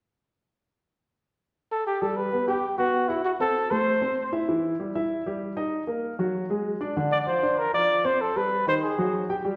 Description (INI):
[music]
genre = jazz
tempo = 194 BPM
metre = 4/4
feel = straight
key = G major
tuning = A4 = 440 Hz
[part]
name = breathy trumpet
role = melody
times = 1.7-4.3, 7.1-9.3 s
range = E4 to D5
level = -26 LUFS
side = equal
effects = none
[part]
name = warm grand piano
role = accompaniment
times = 2.0-9.6 s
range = D3 to G5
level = -29 LUFS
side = equal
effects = none
[sound]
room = wet recital hall reverb, RT60 1.5 s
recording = recorded in a church or concert hall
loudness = -26 LUFS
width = mono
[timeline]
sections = 0.8-2.0 A section; 2.0-9.6 B section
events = none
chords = 0.8 N.C.; 2.0 Gmaj7; 3.2 F#dim; 3.9 Am; 4.5 Em; 5.7 Ebm; 6.3 F#sus2; 7.0 Dm7; 8.2 Am9b5; 8.8 Ab5